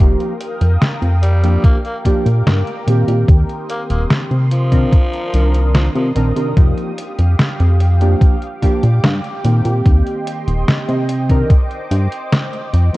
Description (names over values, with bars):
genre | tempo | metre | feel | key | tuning
vaporwave | 73 BPM | 4/4 | straight | unclear | A4 = 439 Hz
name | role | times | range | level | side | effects
warbly lo-fi synth keys | accompaniment | 0.0-13.0 s | Eb3 to Bb4 | -21 LUFS | equal | wide subtle chorus, analog delay
lush unison pad | sustained chords | 0.0-13.0 s | D4 to Eb6 | -27 LUFS | equal | chorus, phaser
chorused synth bass | bass | 0.0-12.9 s | Eb1 to C3 | -13 LUFS | equal | tube saturation
detuned 8-bit digital drum machine | drums | 0.0-13.0 s | hi-hat, snare drum | -18 LUFS | equal | none
breathy tenor saxophone | melody | 1.2-6.1 s | F3 to Bb3 | -26 LUFS | equal | tape echo
electronic kick drum | drums | 1.6-11.7 s | none | -11 LUFS | equal | none
room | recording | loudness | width
digital ambience | cassette tape | -13 LUFS | side -19 dB against mid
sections
0.0-13.0 A section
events
none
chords
0.0 F9sus4; 1.6 Bb6; 3.3 Eb6; 4.5 Cm9; 6.6 F9sus4; 8.2 Bb6; 9.9 Eb6; 11.1 F7sus2 (rootless)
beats
| 0.00 0.82 1.64 2.46 | 3.28 4.11 4.93 5.75 | 6.57 7.39 8.21 9.04 | 9.86 10.68 11.50 12.32